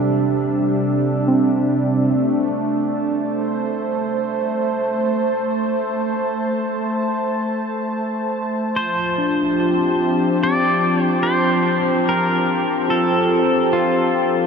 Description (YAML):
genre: ambient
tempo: 73 BPM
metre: 4/4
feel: straight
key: unclear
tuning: A4 = 440 Hz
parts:
  - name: warm analog pad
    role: sustained chords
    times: 0.0-14.5 s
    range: C3 to A5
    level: -19 LUFS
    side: equal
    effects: lush chorus
  - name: overdriven tine electric piano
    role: arpeggios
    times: 0.0-2.5, 9.2-14.5 s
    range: C4 to C5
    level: -22 LUFS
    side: equal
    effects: analog chorus, ping-pong delay
  - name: pedal steel guitar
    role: melody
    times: 8.8-14.5 s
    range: F4 to D5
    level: -20 LUFS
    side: equal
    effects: ping-pong delay
room: wet huge ambient reverb, RT60 7.6 s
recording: dark, warm production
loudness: -17 LUFS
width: side -6 dB against mid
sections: 0.0-14.5 A section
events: none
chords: 0.0 Cadd9; 2.1 Am; 8.7 Fmaj9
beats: 0.45 1.27 | 2.10 2.92 3.74 4.57 | 5.40 6.23 7.06 7.90 | 8.74 9.57 10.40 11.23 | 12.05 12.88 13.70